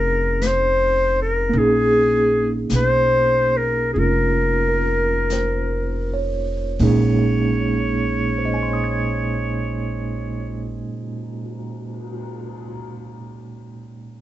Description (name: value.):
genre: jazz ballad.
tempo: 38-56 BPM.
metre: 4/4.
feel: swing 67% on 8ths.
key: Bb minor.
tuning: A4 = 440 Hz.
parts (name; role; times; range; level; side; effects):
breathy clarinet; melody; 0.0-10.9 s; Ab4 to Db5; -20 LUFS; left 1 dB; none.
tine electric piano; accompaniment; 0.0-14.2 s; Bb2 to Ab6; -23 LUFS; right 2 dB; medium tremolo.
upright bass; bass; 0.0-10.8 s; F1 to Cb2; -24 LUFS; equal; none.
jazz brush drum kit; drums; 0.4-12.8 s; brushed snare drum, cymbal swell, hi-hat, kick drum, ride cymbal, snare drum; -32 LUFS; left 4 dB; none.
room: moderate studio ambience, RT60 0.5 s.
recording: band playing live in one room, nothing above 8.0 kHz.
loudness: -17 LUFS.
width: side -14 dB against mid.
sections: 0.0-6.8 A section; 6.8-13.1 B section.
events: slowing down 0.0-6.8.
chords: 0.0 Bbm11.